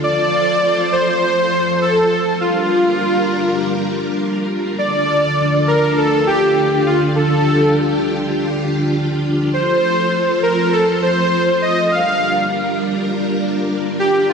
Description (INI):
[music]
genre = synthwave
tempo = 101 BPM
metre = 4/4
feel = straight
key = unclear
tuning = A4 = 441 Hz
[part]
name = soft supersaw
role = melody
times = 0.0-14.3 s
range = F4 to F5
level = -16 LUFS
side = equal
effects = ping-pong delay
[part]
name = string machine, full ensemble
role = sustained chords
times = 0.0-14.3 s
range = D3 to C5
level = -18 LUFS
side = equal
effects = ensemble chorus
[sound]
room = moderate lush hall reverb, RT60 2.6 s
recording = none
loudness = -14 LUFS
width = side -6 dB against mid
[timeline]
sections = 0.0-14.3 A section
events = none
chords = 0.0 F; 2.4 Gm7; 4.8 Dm; 9.5 F; 11.9 Gm7